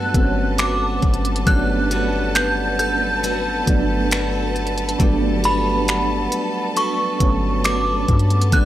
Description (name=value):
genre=contemporary R&B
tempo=68 BPM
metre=4/4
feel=straight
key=unclear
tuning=A4 = 440 Hz
part: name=synth chime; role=melody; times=0.0-8.7 s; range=B5 to G6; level=-23 LUFS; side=right 1 dB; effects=ensemble chorus, tape echo
part: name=soft electric-piano-like synth keys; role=accompaniment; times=0.0-8.7 s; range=F#3 to D4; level=-23 LUFS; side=right 3 dB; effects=chorus, phaser
part: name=clear studio string section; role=sustained chords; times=0.0-8.7 s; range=A4 to A5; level=-28 LUFS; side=left 1 dB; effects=sidechain pumping
part: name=picked steel-string acoustic guitar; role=arpeggios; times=0.0-8.7 s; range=G3 to A4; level=-26 LUFS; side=left 1 dB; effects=tape echo
part: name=soft 808-style bass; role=bass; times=0.0-8.7 s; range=G1 to G2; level=-23 LUFS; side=equal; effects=none
part: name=smooth R&B drum kit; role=drums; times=0.1-8.7 s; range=finger snaps, hi-hat, kick drum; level=-19 LUFS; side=equal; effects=none
room=digital ambience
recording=dry, gritty hardware recording, transformer saturation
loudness=-17 LUFS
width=side -13 dB against mid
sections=0.0-8.7 A section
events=none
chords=0.0 Gmaj9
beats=0.58 | 1.47 2.35 3.23 4.12 | 5.00 5.88 6.76 7.64 | 8.53